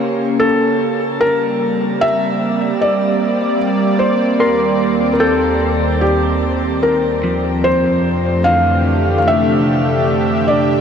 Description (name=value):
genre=ambient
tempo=75 BPM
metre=4/4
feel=straight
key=unclear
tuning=A4 = 441 Hz
part: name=felt-muted upright piano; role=melody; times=0.0-10.8 s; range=G4 to F5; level=-17 LUFS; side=equal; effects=tape echo
part: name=warm analog pad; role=sustained chords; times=0.0-10.8 s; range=Eb2 to E5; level=-16 LUFS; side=equal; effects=chorus
part: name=electric guitar at the edge of break-up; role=arpeggios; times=0.0-10.8 s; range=Db3 to C6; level=-24 LUFS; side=equal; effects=tremolo, tape echo
part: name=organ-like drone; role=drone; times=9.3-10.8 s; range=C3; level=-24 LUFS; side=left 1 dB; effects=ensemble chorus, built-in reverb
room=wet shimmer reverb, RT60 6.9 s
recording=none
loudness=-13 LUFS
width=side -7 dB against mid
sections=0.0-10.8 A section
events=fade-in on clean electric guitar 0.0-10.8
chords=0.0 Bbm6; 1.2 Gm; 4.4 Ebmaj7; 7.6 Fmaj7